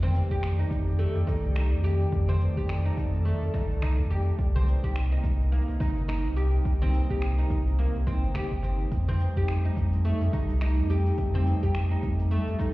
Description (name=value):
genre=organic downtempo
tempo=106 BPM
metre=4/4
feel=swing 59% on 16ths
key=unclear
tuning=A4 = 441 Hz
part: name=airy breathy pad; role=sustained chords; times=0.0-12.7 s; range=C3 to D5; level=-34 LUFS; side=right 1 dB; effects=chorus, sidechain pumping
part: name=oud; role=arpeggios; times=0.0-12.7 s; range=A3 to G4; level=-34 LUFS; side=left 1 dB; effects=tape echo
part: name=warm sub bass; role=bass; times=0.0-12.6 s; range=G1 to F2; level=-25 LUFS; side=equal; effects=tube saturation
part: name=deep house drum kit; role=drums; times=0.0-12.7 s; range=finger snaps, hi-hat, shaker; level=-43 LUFS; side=equal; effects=overdrive
part: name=cajon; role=percussion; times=0.0-12.7 s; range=none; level=-36 LUFS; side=right 1 dB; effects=none
part: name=electronic kick drum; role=drums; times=0.3-12.7 s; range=none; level=-30 LUFS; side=equal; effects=overdrive
room=light reverb, digital ambience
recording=heard muffled through a wall, stone room reverb, EQ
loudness=-24 LUFS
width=side -19 dB against mid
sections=0.0-12.7 A section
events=none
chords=0.0 F13; 4.4 Cm7; 8.9 F9